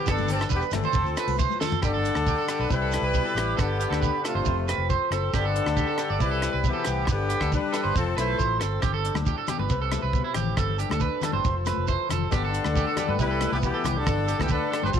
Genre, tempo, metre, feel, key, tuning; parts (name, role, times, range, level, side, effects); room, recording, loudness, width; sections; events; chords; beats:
highlife guitar band; 137 BPM; 4/4; straight; G mixolydian; A4 = 444 Hz
bright horn section; melody; 0.0-8.6, 12.3-15.0 s; A3 to C5; -29 LUFS; left 2 dB
fingerpicked swing-style acoustic guitar; accompaniment; 0.0-15.0 s; G2 to B4; -35 LUFS; left 12 dB
electric guitar at the edge of break-up; arpeggios; 0.0-15.0 s; E4 to D5; -29 LUFS; right 9 dB; lush chorus, tape echo
fingered electric bass; bass; 0.1-15.0 s; E1 to G2; -28 LUFS; equal
tight funk drum kit; drums; 0.1-15.0 s; hi-hat, kick drum, rim click, snare drum, toms; -30 LUFS; equal
shekere; percussion; 0.1-15.0 s; -33 LUFS; right 7 dB
congas; percussion; 0.2-1.7, 8.8-14.9 s; -34 LUFS; left 11 dB
growling trombone; second line; 1.8-8.6, 12.3-15.0 s; C3 to A3; -32 LUFS; left 11 dB
light reverb, small room ambience; 1960s-style stereo with parts hard left and right; -23 LUFS; side -8 dB against mid
0.0-1.8 A section; 1.8-15.0 B section
drum fill 1.6
0.1 Gadd9; 1.0 F; 1.8 Gadd9; 2.7 Cmaj7; 3.6 Gadd9; 4.5 F; 5.3 Gadd9; 6.2 Cmaj7; 7.1 Gadd9; 7.9 F; 8.8 Gadd9; 9.7 Cmaj7; 10.6 Gadd9; 11.4 F; 12.3 Gadd9; 13.2 Cmaj7; 14.1 Gadd9
| 0.09 0.52 0.96 1.40 | 1.83 2.27 2.71 3.14 | 3.58 4.02 4.45 4.89 | 5.33 5.76 6.20 6.64 | 7.08 7.51 7.95 8.39 | 8.82 9.26 9.70 10.13 | 10.57 11.01 11.44 11.88 | 12.32 12.75 13.19 13.63 | 14.06 14.50 14.94